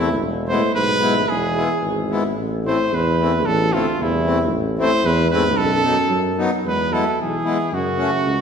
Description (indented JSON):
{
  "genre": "alpine folk, alpine dance band",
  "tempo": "112 BPM",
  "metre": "2/4",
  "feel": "rubato",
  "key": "A harmonic minor",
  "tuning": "A4 = 440 Hz",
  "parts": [
    { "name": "clear trumpet", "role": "melody", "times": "0.0-8.4 s", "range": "E4 to C5", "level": "-21 LUFS", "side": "right 1 dB", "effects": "none" },
    { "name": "dark euphonium", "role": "second line", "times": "0.0-8.4 s", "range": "C2 to G#3", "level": "-24 LUFS", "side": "right 2 dB", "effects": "none" },
    { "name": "accordion", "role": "accompaniment", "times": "0.0-8.1 s", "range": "F#3 to F#4", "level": "-24 LUFS", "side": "left 4 dB", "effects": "none" },
    { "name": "warm tuba", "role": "bass", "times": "0.0-8.4 s", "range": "E1 to F#2", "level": "-23 LUFS", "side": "left 1 dB", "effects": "none" }
  ],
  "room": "wet recital hall reverb, RT60 1.6 s",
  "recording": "recorded in a church or concert hall",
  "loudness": "-17 LUFS",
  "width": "side -6 dB against mid",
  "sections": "0.0-6.7 A section; 6.7-8.4 B section",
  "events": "none",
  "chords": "0.2 E; 2.4 Am; 5.6 B7; 6.7 E; 7.7 F#m"
}